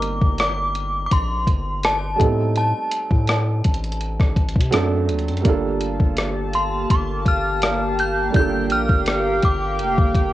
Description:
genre	contemporary R&B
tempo	83 BPM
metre	4/4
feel	swing 54% on 16ths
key	G minor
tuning	A4 = 435 Hz
part	synth chime	melody	0.0-10.3 s	A5 to G6	-24 LUFS	equal	ensemble chorus, cassette tape, plate reverb
part	warm grand piano	accompaniment	0.0-10.3 s	F#3 to Bb4	-26 LUFS	right 6 dB	cassette tape, plate reverb
part	long sustained 808-style bass	bass	0.0-10.3 s	F1 to C3	-25 LUFS	left 1 dB	none
part	gated 80s digital drum machine	drums	0.0-10.3 s	hi-hat, kick drum, rim click	-20 LUFS	left 1 dB	cassette tape
part	chorused pulse-width pad	sustained chords	5.5-10.3 s	Bb3 to A5	-24 LUFS	equal	sidechain pumping, cassette tape
room	light reverb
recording	home recording on cassette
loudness	-18 LUFS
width	side -15 dB against mid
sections	0.0-10.3 A section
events	none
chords	0.0 Cm7/G; 2.2 Am7b5; 4.7 D7; 5.5 Gm9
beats	0.39 1.11 1.84 | 2.56 3.28 4.01 4.73 | 5.45 6.17 6.90 7.62 | 8.34 9.07 9.79

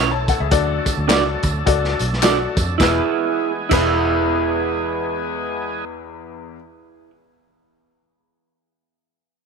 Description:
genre	uptempo 1960s-style soul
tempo	105 BPM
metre	4/4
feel	swing 60% on 8ths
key	E mixolydian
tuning	A4 = 440 Hz
part	clear upright piano	accompaniment	0.0-6.6 s	E2 to C#6	-23 LUFS	left 12 dB	none
part	overdriven tonewheel organ	sustained chords	0.0-5.8 s	E3 to A4	-28 LUFS	right 1 dB	slow rotary speaker
part	electric guitar through a small old amp	stabs	0.0-7.1 s	D4 to E5	-22 LUFS	right 11 dB	none
part	vintage muted fingered electric bass	bass	0.0-6.5 s	E1 to F2	-24 LUFS	right 1 dB	none
part	crunchy breakbeat drum kit	drums	0.3-3.8 s	crash cymbal, hi-hat, kick drum, snare drum	-22 LUFS	equal	none
part	tambourine and handclaps	percussion	0.3-3.8 s	none	-28 LUFS	right 1 dB	none
room	light reverb, small room ambience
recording	1960s-style stereo with parts hard left and right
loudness	-17 LUFS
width	side -5 dB against mid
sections	0.0-2.8 A section; 2.8-5.1 B section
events	none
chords	0.0 A; 0.5 D; 2.8 E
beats	| 0.51 1.08 1.66 2.23 | 2.80 3.37 3.94 4.51

